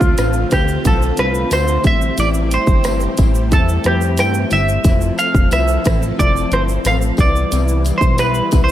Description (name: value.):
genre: indie pop, bedroom pop.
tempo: 90 BPM.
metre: 4/4.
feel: straight.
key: unclear.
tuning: A4 = 440 Hz.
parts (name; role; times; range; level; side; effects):
semi-hollow electric guitar; melody; 0.0-8.7 s; F4 to G5; -19 LUFS; right 2 dB; lush chorus, slapback echo.
electric guitar through a small old amp; accompaniment; 0.0-8.7 s; A2 to F4; -23 LUFS; left 4 dB; ensemble chorus, vibrato effect, slapback echo.
string machine, full ensemble; sustained chords; 0.0-8.7 s; D3 to A4; -26 LUFS; equal; ensemble chorus.
chorused synth bass; bass; 0.0-8.7 s; F1 to G2; -18 LUFS; equal; none.
house drum kit; drums; 0.0-8.7 s; hi-hat, kick drum, rim click, shaker; -17 LUFS; equal; none.
tambourine; percussion; 0.2-8.7 s; none; -36 LUFS; left 6 dB; none.
room: light reverb, digital ambience.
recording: none.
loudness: -13 LUFS.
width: side -12 dB against mid.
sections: 0.0-8.7 A section.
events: none.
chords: 0.0 Dm7; 1.8 Am7; 4.8 Fmaj7; 7.2 Cmaj7.